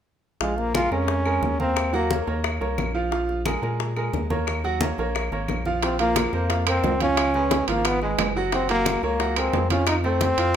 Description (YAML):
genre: latin, salsa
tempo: 178 BPM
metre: 4/4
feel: straight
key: Bb minor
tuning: A4 = 440 Hz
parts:
  - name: bright trombone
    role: melody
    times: 0.4-2.3, 5.8-10.6 s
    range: Ab3 to F4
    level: -24 LUFS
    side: equal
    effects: none
  - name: bright upright piano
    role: accompaniment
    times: 0.4-10.6 s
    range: F3 to Gb5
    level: -27 LUFS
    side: right 3 dB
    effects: none
  - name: rubbery square bass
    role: bass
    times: 0.4-10.6 s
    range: Gb1 to Bb2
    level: -28 LUFS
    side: equal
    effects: none
  - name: bongos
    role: percussion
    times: 0.4-10.5 s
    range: none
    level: -32 LUFS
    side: left 10 dB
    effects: none
  - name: congas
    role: percussion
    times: 0.4-10.5 s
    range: none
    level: -31 LUFS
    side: left 1 dB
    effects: none
  - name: claves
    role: percussion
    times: 0.7-10.0 s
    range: none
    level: -35 LUFS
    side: left 2 dB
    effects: none
  - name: timbales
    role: percussion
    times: 5.8-10.5 s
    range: none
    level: -29 LUFS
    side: right 8 dB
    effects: none
room: light reverb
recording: none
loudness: -21 LUFS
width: side -9 dB against mid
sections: 0.4-5.8 A section; 5.8-10.6 B section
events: none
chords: 0.4 Bbm7; 1.8 Ebm7; 3.1 Bbm7; 4.5 Ebm7; 5.8 Bbmadd9; 7.2 Db7; 8.5 Gbadd9; 9.9 F